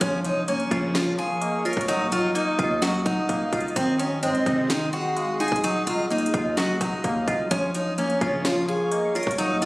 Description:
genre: hip hop, trap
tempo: 128 BPM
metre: 4/4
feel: half-time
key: unclear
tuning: A4 = 440 Hz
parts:
  - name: picked steel-string acoustic guitar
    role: melody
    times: 0.0-9.7 s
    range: C4 to Bb4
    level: -25 LUFS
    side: equal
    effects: digital delay
  - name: hollow clarinet-like synth lead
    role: second line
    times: 0.0-9.7 s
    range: Db5 to Gb5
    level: -30 LUFS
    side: equal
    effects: chorus, digital delay
  - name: glassy wavetable pluck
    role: accompaniment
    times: 0.0-9.7 s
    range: Eb3 to F4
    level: -29 LUFS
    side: left 1 dB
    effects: chorus
  - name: granular cloud pad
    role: sustained chords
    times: 0.9-9.7 s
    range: Gb3 to Eb6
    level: -36 LUFS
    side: equal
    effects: built-in reverb
  - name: hard-hitting 808-style bass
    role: bass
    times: 0.0-9.7 s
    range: Db1 to Ab2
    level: -32 LUFS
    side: equal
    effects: none
  - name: trap drum kit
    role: drums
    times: 0.0-9.7 s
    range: hi-hat, kick drum, snare drum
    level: -29 LUFS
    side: equal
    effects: overdrive
  - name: impact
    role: sound effects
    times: 0.0-1.9 s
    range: none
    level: -40 LUFS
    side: equal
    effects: none
  - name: big bright polysynth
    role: stabs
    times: 0.7-1.2, 4.5-4.9, 8.2-8.7 s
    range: Ab2 to F3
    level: -33 LUFS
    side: equal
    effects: chorus
room: light reverb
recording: recorded on a phone in the room, studio reverb, compression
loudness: -21 LUFS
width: side -21 dB against mid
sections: 0.0-9.7 A section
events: impact 0.0-1.9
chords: 0.0 Bbm; 1.9 Ebmadd9; 3.8 Ab; 5.6 Ebmadd9; 7.5 Bbm

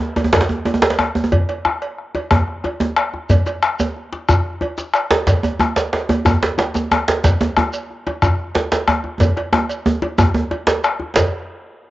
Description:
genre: west african traditional, West African drum ensemble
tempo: 122 BPM (dotted quarters)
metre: 12/8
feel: straight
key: none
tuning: none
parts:
  - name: djembe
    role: percussion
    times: 0.0-11.3 s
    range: none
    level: -25 LUFS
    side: left 2 dB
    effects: none
  - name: djembe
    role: percussion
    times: 0.0-11.3 s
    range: none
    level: -18 LUFS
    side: right 2 dB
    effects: none
  - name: cowbell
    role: percussion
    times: 0.2-11.3 s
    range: none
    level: -27 LUFS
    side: right 4 dB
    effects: none
  - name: bombo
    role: percussion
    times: 0.3-11.3 s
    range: none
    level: -18 LUFS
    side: left 2 dB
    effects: none
  - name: shekere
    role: percussion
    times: 3.3-11.3 s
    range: none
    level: -24 LUFS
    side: equal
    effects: none
room: light reverb, studio reverb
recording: home recording on cassette, nothing above 7.7 kHz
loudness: -16 LUFS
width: side -16 dB against mid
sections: 0.0-11.2 A section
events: drum fill 9.2-11.2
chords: none

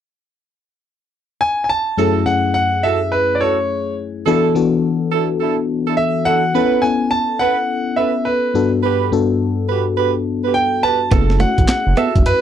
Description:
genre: R&B, new jack swing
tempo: 105 BPM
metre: 4/4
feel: swing 64% on 16ths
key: F# minor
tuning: A4 = 440 Hz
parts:
  - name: clear concert grand piano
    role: melody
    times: 1.4-12.4 s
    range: B4 to A5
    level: -18 LUFS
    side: right 1 dB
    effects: slapback echo
  - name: FM electric piano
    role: accompaniment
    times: 2.0-12.4 s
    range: F#2 to A4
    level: -18 LUFS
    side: left 5 dB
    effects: chorus
  - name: dark horn section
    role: stabs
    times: 2.0-12.1 s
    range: C#4 to B4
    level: -19 LUFS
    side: right 13 dB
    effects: slapback echo
  - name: direct-recorded clean electric guitar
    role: riff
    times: 11.1-12.1 s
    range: A3 to B3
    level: -20 LUFS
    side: right 6 dB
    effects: analog chorus
  - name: smooth synth bass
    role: bass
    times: 11.1-12.3 s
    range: F#1 to F#2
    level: -16 LUFS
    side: right 1 dB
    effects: none
  - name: breakbeat sampler-style drum kit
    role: drums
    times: 11.1-12.4 s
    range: handclaps, hi-hat, kick drum, snare drum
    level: -15 LUFS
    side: right 1 dB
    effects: none
room: light reverb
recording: dry, close 1970s-style studio recording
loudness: -14 LUFS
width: side -9 dB against mid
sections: 0.0-2.0 A section; 2.0-12.4 B section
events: none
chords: 0.0 N.C.; 2.0 F#m7; 4.3 E7sus4; 6.5 Aadd9; 8.5 Gmaj7; 11.1 F#m7

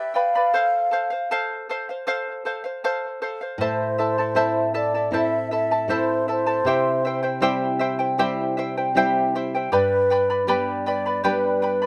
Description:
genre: andean folk, Andean ensemble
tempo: 78 BPM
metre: 4/4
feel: straight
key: A minor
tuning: A4 = 440 Hz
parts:
  - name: mellow hollow baroque flute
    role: melody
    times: 0.0-11.9 s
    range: B4 to F5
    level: -24 LUFS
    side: equal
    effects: none
  - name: charango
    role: accompaniment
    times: 0.0-11.9 s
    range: E4 to B5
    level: -26 LUFS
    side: equal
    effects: slapback echo
  - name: nylon-string guitar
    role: accompaniment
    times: 3.6-11.9 s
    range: G2 to E4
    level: -30 LUFS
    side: equal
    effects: none
room: little or no reverb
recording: recorded outdoors, with no room sound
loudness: -23 LUFS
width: mono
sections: 0.0-11.9 A section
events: none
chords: 0.0 G; 0.5 F; 3.6 Am; 6.6 C; 9.7 G

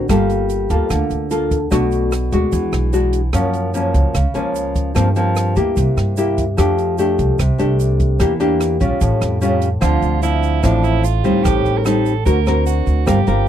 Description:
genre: bossa nova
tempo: 148 BPM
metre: 4/4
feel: straight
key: D minor from 9.8 s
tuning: A4 = 440 Hz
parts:
  - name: nylon-string guitar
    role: accompaniment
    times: 0.0-13.5 s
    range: Gb2 to Bb4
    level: -17 LUFS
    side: left 1 dB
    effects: none
  - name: upright bass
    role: bass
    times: 0.0-13.5 s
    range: G1 to G2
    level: -19 LUFS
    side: equal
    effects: none
  - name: compact cocktail drum kit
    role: drums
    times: 0.1-13.4 s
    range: hi-hat, kick drum, rim click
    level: -23 LUFS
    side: right 1 dB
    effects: none
  - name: egg shaker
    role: percussion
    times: 0.1-13.5 s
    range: none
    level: -38 LUFS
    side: right 22 dB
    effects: none
  - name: warm soprano saxophone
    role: second line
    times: 9.8-13.5 s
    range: D4 to Bb4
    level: -23 LUFS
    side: right 17 dB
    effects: none
room: little or no reverb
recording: dry, close 1970s-style studio recording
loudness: -14 LUFS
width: side -10 dB against mid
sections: 0.0-9.8 A section; 9.8-13.5 B section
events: none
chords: 0.1 Gm9; 1.7 Bm7; 2.5 E9; 3.3 Gbmaj7; 5.0 Gm7; 5.8 C7; 6.6 F69; 8.2 Em7b5; 9.0 Aaug7; 9.8 Dm9; 11.4 Am7b5; 12.3 D7b13

